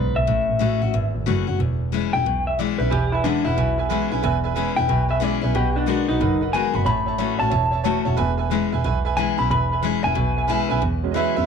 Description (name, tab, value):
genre	rock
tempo	182 BPM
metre	4/4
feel	swing 64% on 8ths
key	E major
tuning	A4 = 440 Hz
part	electric guitar through a small old amp	melody	0.0-10.8 s	D4 to B5	-23 LUFS	left 2 dB	tape echo
part	picked steel-string acoustic guitar	accompaniment	0.0-11.5 s	E2 to F#4	-25 LUFS	left 12 dB	none
part	warm double bass	bass	0.0-11.5 s	E1 to E2	-23 LUFS	right 2 dB	none
part	clear upright piano	accompaniment	2.9-11.5 s	F#3 to A5	-26 LUFS	right 14 dB	none
room	light reverb, small room ambience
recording	1960s-style stereo with parts hard left and right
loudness	-19 LUFS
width	side -6 dB against mid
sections	0.0-10.8 A section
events	none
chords	0.3 A6; 1.6 E6; 5.5 B6; 6.9 A6; 8.2 E6